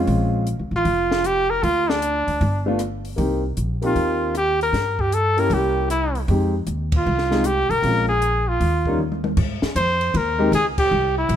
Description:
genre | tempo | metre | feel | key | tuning
jazz, small-group swing and bop | 155 BPM | 4/4 | swing 66% on 8ths | F minor | A4 = 440 Hz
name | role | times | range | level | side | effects
warm grand piano | accompaniment | 0.0-10.5 s | G3 to Ab4 | -24 LUFS | left 1 dB | none
upright bass | bass | 0.0-11.4 s | F1 to Ab2 | -23 LUFS | equal | none
compact cocktail drum kit | drums | 0.1-11.4 s | crash cymbal, hi-hat, kick drum, ride cymbal, rim click, snare drum, toms | -27 LUFS | left 1 dB | none
warm trumpet | melody | 0.8-11.4 s | D4 to C5 | -20 LUFS | equal | none
room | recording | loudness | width
light reverb | none | -18 LUFS | side -10 dB against mid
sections
0.0-9.4 A section; 9.4-11.4 B section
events
band accent 6.9, 10.7; drum fill 9.0-9.4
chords
0.1 Bbm7; 1.6 Dm; 2.4 G7; 3.2 Cm7; 4.7 Gm; 5.5 C7b9; 6.3 Fm9; 7.8 Bbm7; 8.6 Eb9; 9.4 Abadd9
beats
| 0.08 0.47 0.86 1.25 | 1.63 2.02 2.41 2.80 | 3.18 3.57 3.96 4.34 | 4.73 5.12 5.51 5.89 | 6.28 6.67 7.05 7.44 | 7.83 8.21 8.60 8.98 | 9.37 9.76 10.14 10.53 | 10.91 11.30

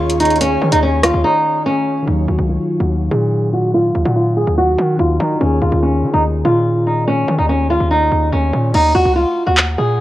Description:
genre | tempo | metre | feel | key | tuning
hip hop, drill | 144 BPM | 4/4 | half-time | Eb minor | A4 = 437 Hz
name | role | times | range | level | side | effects
flamenco guitar | melody | 0.0-10.0 s | Db4 to Ab4 | -15 LUFS | equal | low-pass filter
tine electric piano | accompaniment | 0.0-8.8 s | Eb3 to F5 | -22 LUFS | left 2 dB | low-pass filter
ethereal airy pad | sustained chords | 0.0-2.0 s | Ab4 to Db6 | -27 LUFS | right 1 dB | ensemble chorus, built-in reverb
hard-hitting 808-style bass | bass | 0.0-10.0 s | Db2 to Eb3 | -18 LUFS | equal | none
drill drum kit | drums | 0.1-1.1, 8.7-9.7 s | crash cymbal, handclaps, hi-hat, rim click | -18 LUFS | equal | none
room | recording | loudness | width
light reverb | worn, warbling old tape, cassette tape, warbly pitch drift | -13 LUFS | side -15 dB against mid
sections
0.0-2.1 A section; 2.1-8.7 B section; 8.7-10.0 C section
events
break 1.2-2.1; filter sweep 2.1-8.7; hi-hats muted 8.7-10.0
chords
0.0 Db/Eb; 2.1 Ebmadd9; 5.4 Db/Eb; 8.7 Ebm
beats
| 0.41 0.82 1.24 1.66 | 2.07 2.49 2.91 3.32 | 3.74 4.16 4.57 4.99 | 5.41 5.82 6.24 6.66 | 7.07 7.49 7.91 8.32 | 8.74 9.16 9.57 9.99

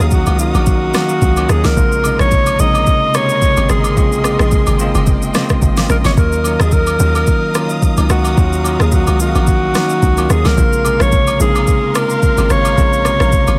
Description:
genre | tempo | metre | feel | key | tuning
amapiano | 109 BPM | 4/4 | swing 55% on 16ths | Eb dorian | A4 = 440 Hz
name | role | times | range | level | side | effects
breathy alto saxophone | melody | 0.0-13.6 s | Gb4 to Eb5 | -19 LUFS | equal | digital delay
bell-like tine electric piano | accompaniment | 0.0-13.6 s | C3 to F5 | -21 LUFS | equal | none
warm studio string section | sustained chords | 0.0-13.6 s | Bb4 to Eb6 | -28 LUFS | equal | sidechain pumping
hollow log drum bass | bass | 0.0-13.6 s | Gb1 to Eb2 | -18 LUFS | equal | none
smooth R&B drum kit | drums | 0.0-13.6 s | kick drum, rim click, shaker, snare drum | -19 LUFS | equal | none
agogo bells | percussion | 0.3-13.6 s | none | -29 LUFS | equal | none
room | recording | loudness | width
light reverb, digital ambience | none | -14 LUFS | mono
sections
0.0-13.6 A section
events
tine electric piano fill 13.3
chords
0.0 Ebm9; 1.8 Bbm9; 6.2 Ebm9; 10.6 Bbm9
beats
0.12 0.67 1.22 | 1.77 2.32 2.87 3.42 | 3.97 4.52 5.07 5.62 | 6.17 6.72 7.27 7.83 | 8.38 8.93 9.48 10.03 | 10.58 11.13 11.68 12.23 | 12.78 13.33

